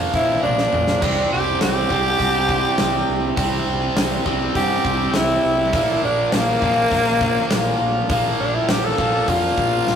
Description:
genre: classic rock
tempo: 102 BPM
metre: 4/4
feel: straight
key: C mixolydian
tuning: A4 = 440 Hz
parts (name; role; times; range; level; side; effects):
- tonewheel organ; sustained chords; 0.0-10.0 s; G3 to D5; -34 LUFS; left 1 dB; none
- biting overdriven guitar; riff; 0.0-10.0 s; Bb2 to C4; -22 LUFS; right 1 dB; none
- fingered electric bass; bass; 0.0-10.0 s; Bb1 to G2; -28 LUFS; equal; none
- growling tenor saxophone; melody; 0.1-10.0 s; Bb3 to A4; -20 LUFS; equal; none
- huge arena drum kit; drums; 0.1-10.0 s; crash cymbal, hi-hat, kick drum, snare drum, toms; -23 LUFS; equal; none
room: wet studio reverb, RT60 0.6 s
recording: rough rehearsal-room recording, warm saturation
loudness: -16 LUFS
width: side -8 dB against mid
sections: 0.0-10.0 A section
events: tenor saxophone solo 0.0-10.0; drum fill 0.4-1.0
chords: 0.0 Bb; 1.0 C; 5.7 Bb

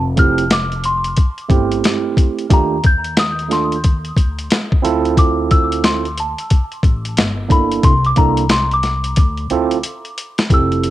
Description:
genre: hip hop, jazz-hop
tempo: 90 BPM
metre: 4/4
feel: swing 63% on 16ths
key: D minor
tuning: A4 = 441 Hz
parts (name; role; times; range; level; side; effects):
- upright bass; bass; 0.0-10.9 s; F1 to Eb2; -22 LUFS; left 1 dB; none
- small celesta; melody; 0.2-10.9 s; A5 to G6; -20 LUFS; left 1 dB; cassette tape, tape echo
- tine electric piano; accompaniment; 0.2-10.9 s; A3 to A4; -18 LUFS; right 7 dB; auto-pan, cassette tape
- boom bap sampler-style drum kit; drums; 0.2-10.9 s; hi-hat, kick drum, snare drum; -14 LUFS; left 1 dB; none
room: light reverb, studio reverb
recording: home recording on cassette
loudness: -13 LUFS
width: side -14 dB against mid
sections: 0.0-10.5 A section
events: celesta solo 0.0-10.5; drum fill 9.2-10.5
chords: 0.0 Fmaj9; 2.5 Ebmaj7(b5, no3); 4.8 Dm9; 7.2 Gadd9; 7.8 C13; 9.2 Dm9

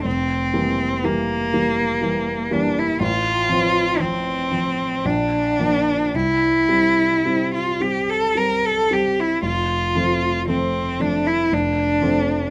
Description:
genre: classical, romantic duo for cello and grand piano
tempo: 54-62 BPM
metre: 3/4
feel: rubato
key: F major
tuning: A4 = 440 Hz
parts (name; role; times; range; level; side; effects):
- rich cello; melody; 0.0-12.5 s; Bb3 to Bb4; -22 LUFS; equal; none
- warm grand piano; accompaniment; 0.0-12.5 s; F1 to D4; -26 LUFS; equal; none
room: little or no reverb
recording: close, detailed microphones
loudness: -20 LUFS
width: mono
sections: 0.0-12.5 A section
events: none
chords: 0.1 Edim/F; 3.0 F/A; 5.0 Bb; 6.1 C; 9.4 F

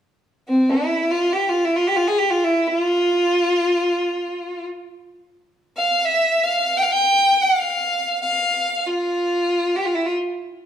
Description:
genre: arabic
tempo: free time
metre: none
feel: none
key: unclear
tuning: A4 = 441 Hz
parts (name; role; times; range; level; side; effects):
- bright violin; melody; 0.5-10.1 s; C4 to G5; -17 LUFS; equal; none
room: moderate recital hall reverb, RT60 1.3 s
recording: dark, warm production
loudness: -17 LUFS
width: side -9 dB against mid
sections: 0.0-10.7 A section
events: none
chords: none

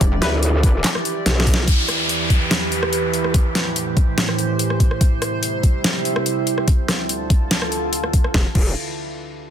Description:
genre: heavy wobble dubstep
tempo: 144 BPM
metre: 4/4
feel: half-time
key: E phrygian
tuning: A4 = 439 Hz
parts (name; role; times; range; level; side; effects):
- evolving wavetable pad; sustained chords; 0.0-8.5 s; D2 to D5; -23 LUFS; right 3 dB; chorus, built-in reverb, sidechain pumping
- dubstep drum kit; drums; 0.0-8.6 s; crash cymbal, handclaps, hi-hat, rim click, snare drum; -22 LUFS; left 1 dB; overdrive
- electronic kick drum; drums; 0.0-8.6 s; none; -16 LUFS; equal; overdrive
- growl bass; bass; 0.2-1.7, 8.3-8.7 s; E1 to D2; -19 LUFS; equal; chorus, overdrive
- downlifter; sound effects; 1.7-5.0 s; none; -24 LUFS; left 1 dB; none
room: light reverb, digital ambience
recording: dense, heavily limited modern master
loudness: -16 LUFS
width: side -9 dB against mid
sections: 0.0-1.7 A section; 1.7-8.3 B section; 8.3-9.5 C section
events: drop 0.0-1.7; drum fill 1.3-1.7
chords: 0.0 Em; 3.3 Am7; 5.0 C; 6.7 Dm; 8.3 Em

